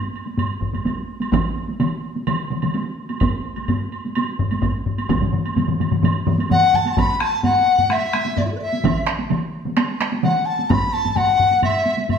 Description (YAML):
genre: japanese traditional, taiko drum ensemble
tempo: 128 BPM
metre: 4/4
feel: straight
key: E suspended pentatonic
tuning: A4 = 440 Hz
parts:
  - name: woodblock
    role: percussion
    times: 0.2-12.2 s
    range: none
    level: -31 LUFS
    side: right 6 dB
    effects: none
  - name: taiko ensemble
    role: percussion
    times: 0.3-12.2 s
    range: none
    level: -25 LUFS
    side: right 2 dB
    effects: none
  - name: solo taiko drums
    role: percussion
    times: 0.4-12.2 s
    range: none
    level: -24 LUFS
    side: left 2 dB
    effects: none
  - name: taiko ensemble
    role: percussion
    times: 0.6-10.8 s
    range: none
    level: -25 LUFS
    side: right 1 dB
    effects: none
  - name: taiko ensemble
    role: percussion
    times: 1.3-10.3 s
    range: none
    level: -22 LUFS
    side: equal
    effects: none
  - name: mellow large dizi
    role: melody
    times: 6.5-12.2 s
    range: E4 to B5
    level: -18 LUFS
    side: left 3 dB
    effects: none
room: wet stone room reverb, RT60 1.2 s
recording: band playing live in one room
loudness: -18 LUFS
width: side -7 dB against mid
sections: 0.0-7.0 A section; 7.0-12.2 B section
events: none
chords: none